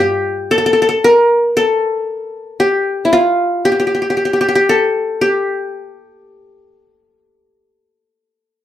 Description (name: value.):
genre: turkish.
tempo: 115 BPM (eighths).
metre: 10/8.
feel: straight.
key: G makam nikriz.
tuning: A4 = 441 Hz.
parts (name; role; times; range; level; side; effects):
qanun; melody; 0.0-8.3 s; E4 to Bb4; -12 LUFS; left 1 dB; none.
room: wet studio ambience, RT60 0.5 s.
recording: heard from further back in the room.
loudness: -12 LUFS.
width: side -12 dB against mid.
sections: 0.0-8.6 A section.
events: none.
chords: none.